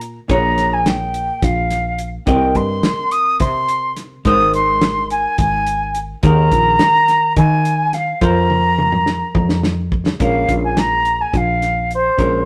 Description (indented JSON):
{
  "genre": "progressive instrumental, band music in an uneven meter",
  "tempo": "212 BPM (eighths)",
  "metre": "7/8",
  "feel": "straight",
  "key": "Bb dorian",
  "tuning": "A4 = 440 Hz",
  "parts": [
    { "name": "vintage hollow-body jazz guitar", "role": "accompaniment", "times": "0.0-12.5 s", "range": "Bb2 to Eb5", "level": "-24 LUFS", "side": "equal", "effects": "none" },
    { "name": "woody fretless electric bass", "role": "bass", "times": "0.0-12.5 s", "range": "Ab1 to Eb3", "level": "-22 LUFS", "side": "equal", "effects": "none" },
    { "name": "damped 70s drum kit", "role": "drums", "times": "0.0-12.3 s", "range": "hi-hat, kick drum, snare drum, toms", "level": "-22 LUFS", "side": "equal", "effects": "none" },
    { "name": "silver concert flute", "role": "melody", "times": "0.3-12.5 s", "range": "C5 to Eb6", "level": "-19 LUFS", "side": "equal", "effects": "none" }
  ],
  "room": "moderate studio reverb, RT60 0.7 s",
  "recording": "rough rehearsal-room recording, tube saturation",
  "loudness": "-16 LUFS",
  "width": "mono",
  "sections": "0.0-10.2 A section; 10.2-12.5 B section",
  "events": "drum fill 8.5-10.2",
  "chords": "0.0 Bbm7; 2.3 Cm7; 4.3 Abadd9; 6.2 Ebsus4; 8.2 Fsus4; 10.2 Bbm7"
}